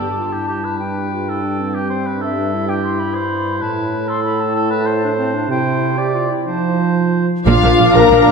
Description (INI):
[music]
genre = cinematic, heroic adventure film score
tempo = 127 BPM (dotted quarters)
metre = 12/8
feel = straight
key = unclear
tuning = A4 = 440 Hz
[part]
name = clear clarinet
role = second line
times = 0.0-8.3 s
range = C4 to Bb4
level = -25 LUFS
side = left 3 dB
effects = none
[part]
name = hollow concert flute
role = second line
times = 0.0-8.3 s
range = E5 to D6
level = -25 LUFS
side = left 3 dB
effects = none
[part]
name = warm oboe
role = second line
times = 0.0-8.3 s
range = G4 to F5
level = -23 LUFS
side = right 1 dB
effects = none
[part]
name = warm trombone section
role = sustained chords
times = 0.0-8.3 s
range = G2 to D4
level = -20 LUFS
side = right 4 dB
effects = none
[part]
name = rich symphonic violin section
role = melody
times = 7.5-8.3 s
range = F5 to Bb5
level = -21 LUFS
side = left 5 dB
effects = none
[part]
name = clear symphonic violin section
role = second line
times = 7.5-8.3 s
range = F5 to Bb5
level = -22 LUFS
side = left 4 dB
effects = none
[part]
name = rich symphonic viola section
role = accompaniment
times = 7.5-8.3 s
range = Bb3 to D4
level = -22 LUFS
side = equal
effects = none
[part]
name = mellow French horn section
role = sustained chords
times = 7.5-8.3 s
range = F4 to Bb4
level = -12 LUFS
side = left 6 dB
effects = none
[part]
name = dark trumpet section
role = stabs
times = 7.5-8.3 s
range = F5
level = -20 LUFS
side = equal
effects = none
[part]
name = rich symphonic double bass section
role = bass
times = 7.5-8.3 s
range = Bb1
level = -19 LUFS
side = right 4 dB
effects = none
[part]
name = warm studio cello section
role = bass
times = 7.5-8.3 s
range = Bb2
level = -19 LUFS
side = right 3 dB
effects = none
[part]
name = warm tuba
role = bass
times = 7.5-8.3 s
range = Bb1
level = -20 LUFS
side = right 4 dB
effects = none
[sound]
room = wet concert hall reverb, RT60 2.0 s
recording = none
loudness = -15 LUFS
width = side -5 dB against mid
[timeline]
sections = 0.0-7.5 A section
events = none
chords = 0.0 Gsus2; 3.6 Am; 5.5 C; 6.5 F7; 7.5 Bb